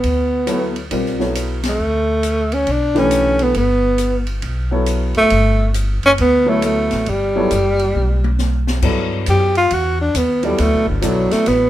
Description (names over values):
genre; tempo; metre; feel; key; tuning
modal jazz; 136 BPM; 4/4; swing 65% on 8ths; G lydian; A4 = 442 Hz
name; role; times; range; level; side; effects
breathy tenor saxophone; melody; 0.0-11.7 s; D3 to G4; -16 LUFS; equal; none
upright bass; bass; 0.0-11.7 s; F#1 to G2; -20 LUFS; equal; none
open jazz drum kit; drums; 0.0-11.6 s; crash cymbal, hi-hat, kick drum, ride cymbal, snare drum, toms; -27 LUFS; equal; none
warm baby grand piano; accompaniment; 0.5-11.7 s; D3 to D5; -20 LUFS; left 1 dB; none
room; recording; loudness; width
moderate club reverb, RT60 0.7 s; minimal, uncompressed stereo recording; -14 LUFS; side -13 dB against mid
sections
0.0-8.8 A section; 8.8-11.7 B section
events
band accent 1.6; drum fill 7.9-8.8; tenor saxophone solo 8.8-11.7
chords
0.0 Gmaj9